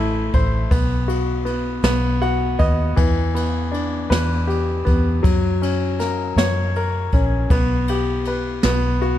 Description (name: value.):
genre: six-eight pop ballad.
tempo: 53 BPM (dotted quarters).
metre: 6/8.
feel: straight.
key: E minor.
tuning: A4 = 439 Hz.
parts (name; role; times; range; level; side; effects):
clear baby grand piano; accompaniment; 0.0-9.2 s; E3 to F#5; -22 LUFS; left 2 dB; none.
vintage muted fingered electric bass; bass; 0.0-9.2 s; A1 to F#2; -21 LUFS; equal; none.
jazz brush drum kit; drums; 0.3-9.2 s; kick drum, ride cymbal, snare drum; -22 LUFS; equal; none.
room: small room ambience.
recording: dark, warm production.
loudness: -17 LUFS.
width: side -12 dB against mid.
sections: 0.0-9.2 A section.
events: grand piano fill 1.8-3.0.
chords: 0.0 Am; 0.7 B5; 1.8 B; 3.0 Em7; 5.2 F#; 7.5 G/B; 8.6 B5.